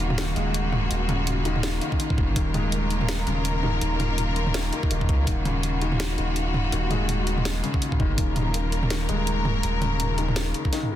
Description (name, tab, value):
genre	half-time drum and bass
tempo	165 BPM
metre	4/4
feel	swing 58% on 16ths, half-time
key	Eb minor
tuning	A4 = 441 Hz
part	clear studio string section	sustained chords	0.0-11.0 s	Eb3 to Bb4	-30 LUFS	left 1 dB	vintage 12-bit sampler grit, sidechain pumping
part	felt-muted upright piano	arpeggios	0.0-11.0 s	Eb2 to Ab3	-29 LUFS	left 3 dB	vintage 12-bit sampler grit, digital delay
part	saturated sub bass	bass	0.0-10.5 s	Eb1 to Db2	-26 LUFS	equal	tube saturation
part	drum and bass drum kit	drums	0.0-10.9 s	hi-hat, snare drum, toms	-29 LUFS	right 1 dB	small room ambience
part	electronic kick drum	drums	1.9-2.4, 4.8-5.4, 7.7-8.3, 10.7 s	none	-24 LUFS	equal	small room ambience
room	light reverb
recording	dense, heavily limited modern master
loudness	-22 LUFS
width	side -12 dB against mid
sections	0.0-11.0 A section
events	none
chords	0.0 Ebmadd9